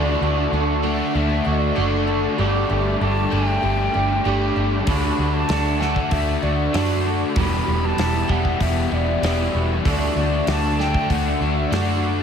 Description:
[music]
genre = rock, shoegaze and dream pop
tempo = 96 BPM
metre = 4/4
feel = straight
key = D major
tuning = A4 = 440 Hz
[part]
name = reedy concert flute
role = melody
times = 0.0-12.2 s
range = D5 to B5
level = -27 LUFS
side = equal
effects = analog delay
[part]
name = fingerpicked twelve-string acoustic guitar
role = arpeggios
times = 0.0-12.2 s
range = G3 to G4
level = -30 LUFS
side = right 6 dB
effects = analog chorus, analog delay
[part]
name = overdriven electric guitar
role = riff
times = 0.0-12.2 s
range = E2 to D4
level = -27 LUFS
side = equal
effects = ensemble chorus
[part]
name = overdriven semi-hollow guitar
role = riff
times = 0.0-12.2 s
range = E2 to G4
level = -25 LUFS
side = left 7 dB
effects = wide subtle chorus
[part]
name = twangy electric guitar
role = riff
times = 0.0-12.2 s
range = D3 to G4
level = -28 LUFS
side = right 8 dB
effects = reverse reverb
[part]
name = vintage muted picked electric bass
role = bass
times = 0.0-12.2 s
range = E1 to F#2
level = -23 LUFS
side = equal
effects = none
[part]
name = loose indie drum kit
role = drums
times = 4.9-11.9 s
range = hi-hat, kick drum, snare drum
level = -26 LUFS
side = equal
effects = none
[sound]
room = wet lush hall reverb, RT60 2.9 s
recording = dreamy mix soaked in reverb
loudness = -18 LUFS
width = side -7 dB against mid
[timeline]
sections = 0.0-12.2 A section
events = none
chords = 0.0 D; 2.4 Gsus2; 4.9 D; 7.4 Em; 9.9 D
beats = 0.53 1.15 1.77 | 2.39 3.01 3.63 4.25 | 4.88 5.50 6.12 6.74 | 7.36 7.99 8.61 9.23 | 9.85 10.48 11.10 11.72

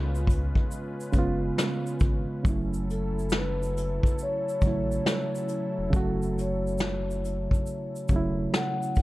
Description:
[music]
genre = lo-fi hip hop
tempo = 69 BPM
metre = 4/4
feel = swing 65% on 16ths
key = F# minor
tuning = A4 = 442 Hz
[part]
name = reed electric piano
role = accompaniment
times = 0.0-9.0 s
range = C#3 to F#4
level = -30 LUFS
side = right 2 dB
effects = none
[part]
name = warm analog pad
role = sustained chords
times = 0.0-9.0 s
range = F#3 to B4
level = -40 LUFS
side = left 1 dB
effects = chorus
[part]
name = sub bass with octave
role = bass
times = 0.0-9.0 s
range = E1 to C#2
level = -32 LUFS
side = equal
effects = none
[part]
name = vintage brush drum kit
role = drums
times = 0.1-9.0 s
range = hi-hat, kick drum, shaker, snare drum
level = -26 LUFS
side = equal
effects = none
[part]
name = vibraphone with soft mallets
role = melody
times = 2.9-9.0 s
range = A4 to F#5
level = -32 LUFS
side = left 2 dB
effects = none
[sound]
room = light reverb, studio reverb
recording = dark, warm production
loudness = -25 LUFS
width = side -18 dB against mid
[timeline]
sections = 0.0-9.0 A section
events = none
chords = 0.0 C#7; 2.4 F#m7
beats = 0.71 1.58 | 2.45 3.32 4.19 5.06 | 5.93 6.80 7.67 8.54

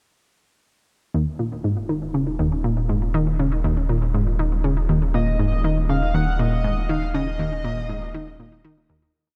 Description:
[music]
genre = ambient, sequencer-driven space music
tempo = 120 BPM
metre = 4/4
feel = straight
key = unclear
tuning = A4 = 440 Hz
[part]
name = analog pluck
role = riff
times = 1.1-9.1 s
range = Eb2 to Eb3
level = -25 LUFS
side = equal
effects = chorus, tape echo
[part]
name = round analog bass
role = bass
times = 1.1-9.1 s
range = Eb1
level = -26 LUFS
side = equal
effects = none
[part]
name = pulse-width lead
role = melody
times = 5.1-8.6 s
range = Eb5 to Gb5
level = -32 LUFS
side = equal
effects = chorus, tape echo
[sound]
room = moderate huge ambient reverb, RT60 7.6 s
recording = dark, warm production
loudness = -22 LUFS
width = mono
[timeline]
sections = 1.1-9.1 A section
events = fade-out 6.5-9.1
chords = 1.1 Eb5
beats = | 1.14 1.64 2.14 2.64 | 3.14 3.64 4.14 4.64 | 5.14 5.64 6.14 6.64 | 7.14 7.64 8.14 8.64

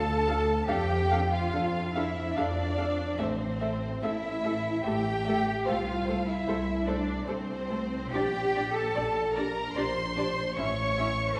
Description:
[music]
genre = classical, slow romantic movement for string orchestra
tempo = 73 BPM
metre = 3/4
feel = rubato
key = unclear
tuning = A4 = 439 Hz
[part]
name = muted symphonic violin section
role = second line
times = 0.0-11.4 s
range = C5 to C#6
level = -36 LUFS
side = equal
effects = none
[part]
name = muted studio cello section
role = bass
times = 0.0-11.4 s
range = C4 to C#5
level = -34 LUFS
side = equal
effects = none
[part]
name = muted symphonic double bass section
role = bass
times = 0.0-11.3 s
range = A1 to F2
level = -35 LUFS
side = equal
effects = none
[part]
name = muted symphonic violin section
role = melody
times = 0.3-11.1 s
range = C5 to F5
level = -40 LUFS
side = equal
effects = none
[part]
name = muted chamber viola section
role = accompaniment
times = 0.3-11.1 s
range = A3 to A4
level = -38 LUFS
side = equal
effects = none
[sound]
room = wet recital hall reverb, RT60 1.7 s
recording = recorded in a church or concert hall, nothing above 11.0 kHz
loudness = -29 LUFS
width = mono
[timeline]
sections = 0.0-11.4 A section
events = none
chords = 0.0 D5; 0.7 Dm/F; 3.2 Am; 5.7 Am/C; 8.1 Gm/Bb; 10.6 A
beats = | 0.68 1.53 2.37 | 3.19 4.02 4.85 | 5.67 6.47 7.27 | 8.13 8.96 9.76 | 10.57

